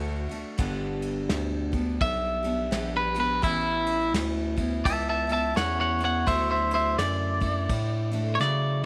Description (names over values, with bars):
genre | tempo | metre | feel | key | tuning
honky-tonk and classic country | 84 BPM | 4/4 | swing 61% on 8ths | D major | A4 = 439 Hz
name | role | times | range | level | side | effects
picked steel-string acoustic guitar | accompaniment | 0.0-8.8 s | G2 to G4 | -34 LUFS | equal | none
growling FM bass | bass | 0.0-8.9 s | G1 to C#3 | -33 LUFS | equal | none
soft brush drum kit | drums | 0.3-8.6 s | kick drum, ride cymbal, snare drum | -36 LUFS | equal | none
twangy electric guitar | melody | 2.0-8.8 s | E4 to A5 | -28 LUFS | equal | none
room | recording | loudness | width
light reverb, small room ambience | none | -27 LUFS | mono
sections
0.0-8.9 A section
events
clean electric guitar solo 0.0-8.9; drum fill 8.4-8.9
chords
0.0 D; 0.6 G; 3.4 Aadd9; 6.3 Dadd9